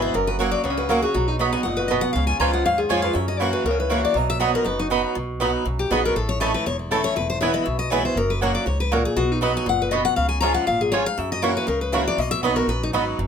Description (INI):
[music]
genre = bluegrass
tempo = 240 BPM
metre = 4/4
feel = swing 53% on 8ths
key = B major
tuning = A4 = 440 Hz
[part]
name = bluegrass banjo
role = melody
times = 0.0-13.0 s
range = F#3 to B4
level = -28 LUFS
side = right 3 dB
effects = none
[part]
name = picked steel-string acoustic guitar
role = melody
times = 0.0-12.9 s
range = D#4 to A#5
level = -24 LUFS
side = left 5 dB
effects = none
[part]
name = picked swing-style acoustic guitar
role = accompaniment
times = 0.0-13.3 s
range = E2 to F#4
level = -25 LUFS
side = right 1 dB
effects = none
[part]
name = upright bass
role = bass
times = 0.0-13.3 s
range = E1 to F#2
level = -27 LUFS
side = equal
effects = none
[part]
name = mandolin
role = stabs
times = 0.4-13.0 s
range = A3 to B5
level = -25 LUFS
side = right 6 dB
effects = none
[sound]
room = light reverb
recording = close, detailed microphones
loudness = -19 LUFS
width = side -7 dB against mid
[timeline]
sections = 0.0-5.2 A section; 5.2-13.2 A section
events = none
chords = 0.2 F#; 1.2 B; 2.2 C#; 3.2 F#7; 4.2 B; 6.2 A; 7.2 E; 8.2 F#; 9.2 B; 10.2 C#; 11.2 F#7; 12.2 B